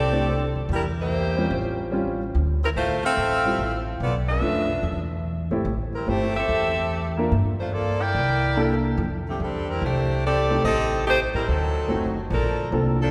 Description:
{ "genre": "jazz, big band swing", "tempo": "144 BPM", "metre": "4/4", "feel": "swing 67% on 8ths", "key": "unclear", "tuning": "A4 = 440 Hz", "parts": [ { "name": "warm saxophone section", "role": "melody", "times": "0.0-13.1 s", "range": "D3 to G5", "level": "-26 LUFS", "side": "equal", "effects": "none" }, { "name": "upright bass", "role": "bass", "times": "0.0-13.1 s", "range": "F#1 to A2", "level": "-28 LUFS", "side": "equal", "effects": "none" }, { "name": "warm concert grand piano", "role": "accompaniment", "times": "0.1-13.0 s", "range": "G3 to Bb4", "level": "-31 LUFS", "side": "equal", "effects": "none" } ], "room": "wet church reverb, RT60 2.8 s", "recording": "recorded in a church or concert hall", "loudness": "-24 LUFS", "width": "mono", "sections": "0.0-12.3 A section", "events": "none", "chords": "0.0 F69 (rootless); 0.7 Edim; 1.5 A7alt; 2.3 Dm9; 4.0 Bm7b5; 4.8 E7alt; 5.7 Am7; 7.3 Gm9; 8.1 C13; 9.0 F69; 10.6 Am7b5; 11.5 D7b9; 12.3 Bbmaj9", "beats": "0.26 | 0.68 1.09 1.51 1.93 | 2.34 2.75 3.17 3.58 | 4.00 4.41 4.83 5.24 | 5.66 6.07 6.49 6.90 | 7.32 7.73 8.15 8.56 | 8.98 9.39 9.81 10.22 | 10.64 11.05 11.47 11.88 | 12.30 12.71" }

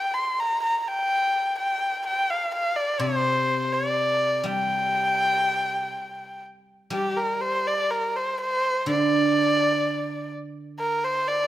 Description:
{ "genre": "chinese traditional", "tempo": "62 BPM", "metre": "2/4", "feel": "rubato", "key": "G yu mode", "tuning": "A4 = 440 Hz", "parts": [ { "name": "warm erhu", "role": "melody", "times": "0.0-11.5 s", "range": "G4 to C6", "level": "-23 LUFS", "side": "equal", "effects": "none" }, { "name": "guzheng", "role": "accompaniment", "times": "3.0-11.5 s", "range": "C3 to G3", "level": "-28 LUFS", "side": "right 2 dB", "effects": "none" } ], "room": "moderate recital hall reverb, RT60 1.4 s", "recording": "none", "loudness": "-22 LUFS", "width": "side -13 dB against mid", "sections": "0.0-6.9 A section; 6.9-11.5 B section", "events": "none", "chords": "none", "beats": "0.14 | 1.10 2.06 | 3.01 3.97 | 4.94 5.93 | 6.93 7.91 | 8.88 9.85 | 10.80" }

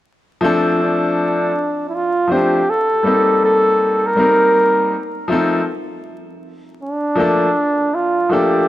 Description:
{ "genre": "hip hop", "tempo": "80 BPM", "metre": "4/4", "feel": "swing 62% on 16ths", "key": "D minor", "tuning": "A4 = 440 Hz", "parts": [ { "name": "bright concert grand piano", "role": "accompaniment", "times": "0.4-8.7 s", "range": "F3 to C5", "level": "-18 LUFS", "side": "left 2 dB", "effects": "none" }, { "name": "warm flugelhorn", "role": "melody", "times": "0.8-8.7 s", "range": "D4 to Bb4", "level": "-16 LUFS", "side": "right 1 dB", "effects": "none" } ], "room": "moderate plate reverb, RT60 3.5 s", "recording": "dark, warm production, vinyl crackle", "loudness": "-14 LUFS", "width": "side -14 dB against mid", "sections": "0.4-8.7 A section", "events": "none", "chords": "0.4 Dm7; 3.4 Cm7; 4.9 F7; 6.4 Bbmaj7", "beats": "| 0.43 1.18 1.93 2.68 | 3.43 4.18 4.93 5.68 | 6.43 7.18 7.93 8.68" }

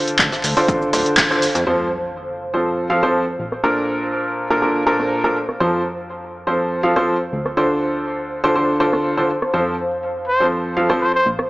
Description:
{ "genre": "piano house", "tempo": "122 BPM", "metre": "4/4", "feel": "straight", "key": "F major", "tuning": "A4 = 440 Hz", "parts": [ { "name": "clear baby grand piano", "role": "riff", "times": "0.0-11.1 s", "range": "Bb2 to F5", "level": "-18 LUFS", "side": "equal", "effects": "sidechain pumping, low-pass filter, dub echo" }, { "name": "warbly tape-like pad", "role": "texture", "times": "0.0-11.5 s", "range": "C5 to A5", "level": "-27 LUFS", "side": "equal", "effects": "chorus, built-in reverb, phaser, sidechain pumping" }, { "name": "punchy analog drum machine", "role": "drums", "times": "0.1-11.5 s", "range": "cabasa, handclaps, hi-hat, rim click", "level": "-20 LUFS", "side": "equal", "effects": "low-pass filter on hats, low-pass filter on perc, low-pass filter on snare" }, { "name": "plucky analog bass", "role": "bass", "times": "0.2-11.5 s", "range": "D1 to F2", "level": "-30 LUFS", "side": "equal", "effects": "tube saturation, sidechain pumping" }, { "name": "electronic kick drum", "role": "drums", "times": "0.2-1.3 s", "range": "none", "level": "-23 LUFS", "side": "equal", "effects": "none" }, { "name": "vintage brush drum kit", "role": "drums", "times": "0.2-1.7 s", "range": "hi-hat, snare drum", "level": "-30 LUFS", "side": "equal", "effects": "none" }, { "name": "sub drop", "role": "sound effects", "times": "1.7-3.6 s", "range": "none", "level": "-40 LUFS", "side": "equal", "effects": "none" }, { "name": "breathy trumpet", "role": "melody", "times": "10.3-11.3 s", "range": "C5", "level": "-18 LUFS", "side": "equal", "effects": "none" } ], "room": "moderate lush hall reverb, RT60 2.3 s", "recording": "small speaker sound", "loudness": "-16 LUFS", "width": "side -20 dB against mid", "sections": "0.0-1.7 A section; 1.7-11.5 B section", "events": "band accent 1.2; impact 1.7-3.6", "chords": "0.0 Dm7; 1.7 F; 3.4 Bbmaj7; 5.6 F; 7.3 Dm7; 9.5 F", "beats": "0.19 0.69 1.18 | 1.67 2.16 2.65 3.15 | 3.64 4.13 4.62 5.11 | 5.60 6.09 6.59 7.08 | 7.57 8.06 8.55 9.05 | 9.54 10.03 10.52 11.01" }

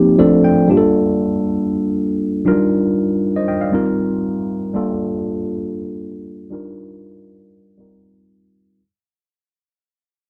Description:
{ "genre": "disco", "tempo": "118 BPM", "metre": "4/4", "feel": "straight", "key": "G minor", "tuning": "A4 = 440 Hz", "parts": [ { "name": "tine electric piano", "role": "solo", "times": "0.0-8.8 s", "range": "F3 to G5", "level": "-18 LUFS", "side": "equal", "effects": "phaser, low-pass filter" } ], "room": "light reverb", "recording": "dry, close 1970s-style studio recording", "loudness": "-17 LUFS", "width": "mono", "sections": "0.7-8.8 A section", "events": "tine electric piano fill 0.0-0.7; fade-out 0.7-8.8; filter sweep on tine electric piano 0.7-8.8", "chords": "0.2 Dm7; 0.7 Gm9; 2.5 Ebmaj9; 4.7 Gm9; 6.5 Ebmaj9; 7.8 F9sus4", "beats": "0.18 | 0.69 1.19 1.70 2.21 | 2.71 3.22 3.73 4.23 | 4.74 5.25 5.75 6.26 | 6.77 7.28 7.78 8.29" }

